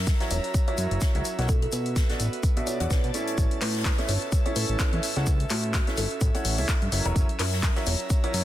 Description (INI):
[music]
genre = piano house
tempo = 127 BPM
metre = 4/4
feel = swing 57% on 16ths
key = A major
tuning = A4 = 440 Hz
[part]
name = fat analog bass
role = bass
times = 0.0-8.4 s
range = E1 to B2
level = -28 LUFS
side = equal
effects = sidechain pumping
[part]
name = airy breathy pad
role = texture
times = 0.0-8.4 s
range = B3 to A#5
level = -36 LUFS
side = right 1 dB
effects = chorus, sidechain pumping
[part]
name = electronic kick drum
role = drums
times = 0.1-8.2 s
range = none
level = -24 LUFS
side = equal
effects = none
[part]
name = punchy analog drum machine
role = drums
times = 0.1-8.4 s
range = handclaps, hi-hat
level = -32 LUFS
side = left 3 dB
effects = none
[part]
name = soft-mallet drum kit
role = drums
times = 0.1-8.4 s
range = hi-hat, shaker, snare drum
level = -37 LUFS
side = left 2 dB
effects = high-pass filter on hats, high-pass filter on snare, high-pass filter on perc, high-pass filter on room
[part]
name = clear upright piano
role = riff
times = 0.2-8.4 s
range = A2 to A#5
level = -33 LUFS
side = right 1 dB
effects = sidechain pumping, low-pass filter, ping-pong delay
[part]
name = kalimba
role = melody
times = 0.3-8.3 s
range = F#4 to C#5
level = -35 LUFS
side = right 2 dB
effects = ping-pong delay
[sound]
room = little or no reverb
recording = dense, heavily limited modern master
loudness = -23 LUFS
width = side -13 dB against mid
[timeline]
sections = 0.0-8.4 A section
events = none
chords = 0.0 F#7; 1.5 Bm7; 3.4 A; 6.9 F#7